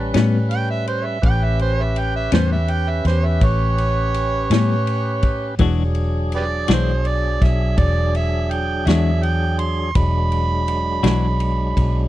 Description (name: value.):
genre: slow blues.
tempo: 55 BPM (dotted quarters).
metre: 12/8.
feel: straight.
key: A mixolydian.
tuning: A4 = 440 Hz.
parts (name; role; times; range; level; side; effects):
overdriven harmonica; second line; 0.0-12.1 s; G4 to C6; -24 LUFS; right 5 dB; none.
tonewheel organ; sustained chords; 0.0-12.1 s; F#3 to B4; -26 LUFS; equal; slow rotary speaker, overdrive.
vintage muted fingered electric bass; bass; 0.0-12.1 s; E1 to A2; -19 LUFS; equal; none.
clean electric guitar; accompaniment; 0.1-11.3 s; A2 to F#4; -20 LUFS; left 7 dB; tremolo.
warm soul drum kit; drums; 0.1-11.9 s; kick drum, ride cymbal, snare drum; -20 LUFS; equal; none.
room: little or no reverb.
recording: dry, close 1970s-style studio recording.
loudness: -16 LUFS.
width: side -15 dB against mid.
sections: 0.0-12.1 A section.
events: harmonica solo 0.0-12.1.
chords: 0.0 A9; 5.6 E9.